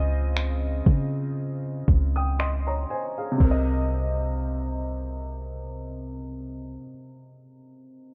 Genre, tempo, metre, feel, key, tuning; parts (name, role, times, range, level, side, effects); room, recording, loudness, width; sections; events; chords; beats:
contemporary R&B; 59 BPM; 4/4; swing 54% on 16ths; C minor; A4 = 440 Hz
felt-muted upright piano; accompaniment; 0.0-8.1 s; C3 to Eb6; -33 LUFS; equal
soft 808-style bass; bass; 0.0-6.8 s; C2 to Db3; -29 LUFS; equal
smooth R&B drum kit; drums; 0.4-3.7 s; crash cymbal, finger snaps, kick drum; -23 LUFS; equal
digital ambience; dark, warm production, low-pass filter; -26 LUFS; mono
0.0-3.4 A section; 3.4-7.5 B section
filter sweep 0.0-3.4
0.0 Dbmaj9; 3.4 Cm7
0.35 1.37 2.39 | 3.40 4.42 5.44 6.45